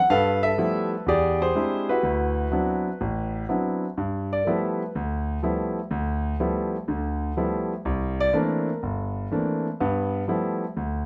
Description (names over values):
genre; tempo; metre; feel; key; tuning
solo jazz; 124 BPM; 4/4; swing 69% on 8ths; unclear; A4 = 440 Hz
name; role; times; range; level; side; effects
clear concert grand piano; solo; 0.0-11.1 s; G1 to F#5; -25 LUFS; equal; none
room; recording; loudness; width
moderate large studio reverb, RT60 0.8 s; none; -26 LUFS; mono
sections
0.0-4.0 A section; 4.0-11.1 B section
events
grand piano solo 4.0-11.1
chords
0.1 G13; 1.1 E7alt; 2.0 D13; 4.0 G13; 7.9 C13; 9.8 G13